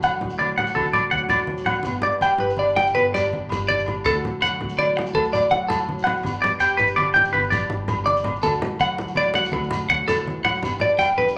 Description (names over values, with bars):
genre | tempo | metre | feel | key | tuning
highlife guitar band | 110 BPM (dotted quarters) | 12/8 | straight | D major | A4 = 440 Hz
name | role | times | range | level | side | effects
fingerpicked steel-string acoustic guitar | accompaniment | 0.0-11.4 s | G2 to G4 | -34 LUFS | equal | none
clean electric guitar | arpeggios | 0.0-11.3 s | A4 to G5 | -22 LUFS | equal | phaser
agogo bells | percussion | 0.0-11.2 s | none | -33 LUFS | equal | none
congas | percussion | 0.0-11.3 s | none | -32 LUFS | equal | none
shekere | percussion | 0.0-11.4 s | none | -42 LUFS | equal | none
upright bass | bass | 0.2-11.4 s | G1 to D2 | -36 LUFS | equal | none
room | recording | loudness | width
wet large studio reverb, RT60 0.9 s | none | -21 LUFS | mono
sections
0.0-11.4 A section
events
none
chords
0.0 D; 1.9 G; 4.1 D; 6.2 G; 8.4 D; 10.6 G